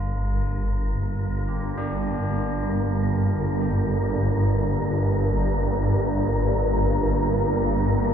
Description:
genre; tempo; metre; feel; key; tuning
dark ambient drone; free time; none; none; G minor; A4 = 440 Hz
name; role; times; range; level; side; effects
tubular bells; arpeggios; 0.0-8.1 s; D4 to G4; -37 LUFS; right 1 dB; diffuse ambient delay
swarming drone; drone; 0.0-8.1 s; G1 to G2; -22 LUFS; equal; built-in reverb
wind-like tuned noise texture; texture; 0.0-8.1 s; Bb3 to Bb4; -29 LUFS; equal; built-in reverb
room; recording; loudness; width
wet cathedral reverb, RT60 5.7 s; dark, warm production; -21 LUFS; side -8 dB against mid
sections
0.0-8.1 A section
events
fade-in on synth texture 0.0-8.1; fade-in on tubular bells 0.0-8.1; filter sweep on synth drone 0.0-8.1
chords
0.0 Gm

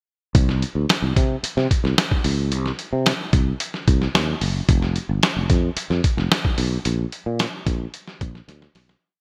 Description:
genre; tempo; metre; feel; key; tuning
polished 1980s jazz-funk pop; 111 BPM; 4/4; straight; unclear; A4 = 441 Hz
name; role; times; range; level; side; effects
sustaining fretless electric bass; bass; 0.3-8.9 s; F1 to C3; -24 LUFS; equal; none
lo-fi sampler-style drum kit; drums; 0.3-9.0 s; hi-hat, kick drum, snare drum; -22 LUFS; equal; gated reverb
room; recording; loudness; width
light reverb; bright 1980s-style digital production; -21 LUFS; mono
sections
0.3-9.0 verse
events
fade-out 6.9-9.0; drum fill 8.5-9.0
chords
none

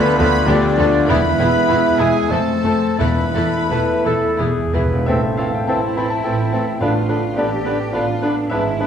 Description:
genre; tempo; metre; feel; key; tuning
classical, romantic movement for piano and orchestra; 83-108 BPM; 3/4; rubato; A minor; A4 = 440 Hz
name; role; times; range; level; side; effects
clear concert grand piano; melody; 0.0-8.9 s; D2 to B5; -21 LUFS; left 1 dB; none
warm symphonic violin section; melody; 0.0-8.9 s; B4 to B5; -28 LUFS; left 4 dB; none
clear oboe; second line; 0.0-8.9 s; D4 to B4; -26 LUFS; right 1 dB; none
mellow concert flute; second line; 0.0-8.9 s; D5 to B5; -26 LUFS; left 4 dB; none
mellow bassoon; accompaniment; 0.0-8.9 s; D3 to G4; -23 LUFS; right 2 dB; none
mellow French horn section; sustained chords; 0.0-8.7 s; D3 to D4; -24 LUFS; left 4 dB; none
rich studio violin section; second line; 0.2-8.9 s; C4 to A4; -29 LUFS; left 2 dB; none
clear symphonic viola section; accompaniment; 0.2-8.9 s; E3 to B3; -29 LUFS; right 1 dB; none
rich symphonic cello section; bass; 0.2-8.9 s; D2 to G4; -27 LUFS; right 3 dB; none
warm symphonic double bass section; bass; 0.2-8.9 s; E1 to D2; -26 LUFS; right 3 dB; none
timpani; percussion; 1.1-7.6 s; E2 to A2; -25 LUFS; equal; none
clear clarinet; second line; 3.7-8.9 s; C4 to B4; -24 LUFS; left 1 dB; none
room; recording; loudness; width
wet recital hall reverb, RT60 1.6 s; recorded in a church or concert hall; -15 LUFS; side -8 dB against mid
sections
0.0-5.1 A section; 5.1-8.9 B section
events
timpani fill 4.4-5.1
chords
0.0 Bm7b5/D; 1.1 E; 2.3 F; 3.0 Esus4; 4.4 E; 5.1 Am; 6.8 Bm7b5/A

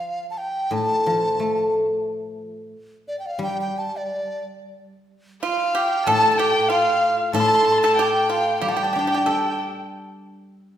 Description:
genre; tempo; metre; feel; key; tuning
chinese traditional, Chinese chamber ensemble; 87-95 BPM; 2/4; rubato; unclear; A4 = 438 Hz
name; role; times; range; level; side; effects
mellow hollow large dizi; melody; 0.0-9.6 s; D5 to A5; -24 LUFS; equal; none
guzheng; accompaniment; 0.0-10.6 s; A2 to G4; -24 LUFS; left 1 dB; none
pipa; second line; 5.4-9.6 s; F4 to A4; -24 LUFS; right 3 dB; none
warm erhu; second line; 5.4-9.6 s; F5 to C6; -23 LUFS; left 2 dB; none
room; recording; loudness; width
wet recital hall reverb, RT60 1.5 s; heard from further back in the room; -19 LUFS; side -10 dB against mid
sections
0.0-4.8 A section; 4.8-10.8 B section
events
none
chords
none

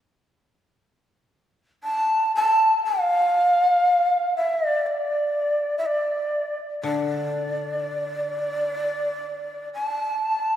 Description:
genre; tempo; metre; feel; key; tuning
japanese traditional, Japanese chamber music; 61 BPM; 4/4; rubato; unclear; A4 = 439 Hz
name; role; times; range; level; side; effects
breathy long shakuhachi; melody; 1.8-10.6 s; D5 to A5; -21 LUFS; equal; none
koto; accompaniment; 6.8-9.7 s; D3; -30 LUFS; left 3 dB; none
room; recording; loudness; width
wet church reverb, RT60 2.7 s; recorded in a church or concert hall; -21 LUFS; side -10 dB against mid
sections
0.0-2.9 A section; 2.9-10.6 B section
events
none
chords
none

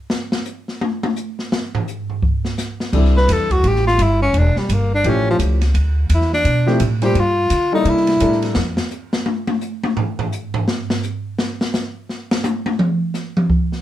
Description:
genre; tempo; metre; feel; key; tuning
jazz, small-group swing and bop; 170 BPM; 4/4; swing 62% on 8ths; C major; A4 = 440 Hz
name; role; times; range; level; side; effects
open jazz drum kit; drums; 0.1-13.8 s; crash cymbal, hi-hat, kick drum, ride cymbal, snare drum, toms; -21 LUFS; equal; none
warm baby grand piano; accompaniment; 2.9-8.6 s; F3 to C5; -20 LUFS; left 2 dB; none
upright bass; bass; 2.9-8.8 s; E1 to D3; -17 LUFS; equal; none
breathy tenor saxophone; melody; 3.2-8.5 s; F3 to B4; -17 LUFS; equal; plate reverb
room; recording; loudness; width
moderate studio reverb, RT60 0.5 s; heard from further back in the room; -16 LUFS; side -12 dB against mid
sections
0.0-2.9 A section; 2.9-13.8 A section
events
tenor saxophone solo 0.0-13.8; drum solo 0.0-2.9, 8.6-13.8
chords
0.0 N.C.; 2.9 C69; 4.3 Em7b5; 5.0 A7b13; 5.8 Dm11; 7.2 Gm9; 7.9 C13; 8.6 N.C.

